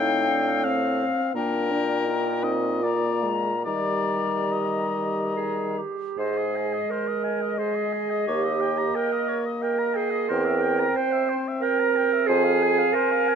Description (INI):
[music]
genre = classical, slow romantic movement for wind quintet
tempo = 68-92 BPM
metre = 3/4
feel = rubato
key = Eb major, Ab major from 6.2 s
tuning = A4 = 444 Hz
[part]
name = silver concert flute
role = melody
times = 0.0-13.4 s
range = Eb5 to Bb5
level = -30 LUFS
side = left 7 dB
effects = none
[part]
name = clear oboe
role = second line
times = 0.0-13.4 s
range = Bb4 to Bb5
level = -30 LUFS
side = left 6 dB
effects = none
[part]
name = warm French horn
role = accompaniment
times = 0.0-13.4 s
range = G3 to Eb4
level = -30 LUFS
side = left 2 dB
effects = none
[part]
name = warm clarinet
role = accompaniment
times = 0.0-13.4 s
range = C4 to C5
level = -26 LUFS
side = right 7 dB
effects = none
[part]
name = mellow bassoon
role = bass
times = 0.0-12.8 s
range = Eb2 to Eb3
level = -27 LUFS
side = right 1 dB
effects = none
[sound]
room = light reverb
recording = close, detailed microphones, lossy compression artefacts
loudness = -22 LUFS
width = side -7 dB against mid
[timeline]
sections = 0.0-6.2 A section; 6.2-13.4 B section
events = none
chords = 0.0 F7/A; 1.3 Eb/Bb; 2.8 Bb7; 3.7 Eb; 6.2 Ab; 8.3 Eb; 10.3 C7/E; 12.3 Fm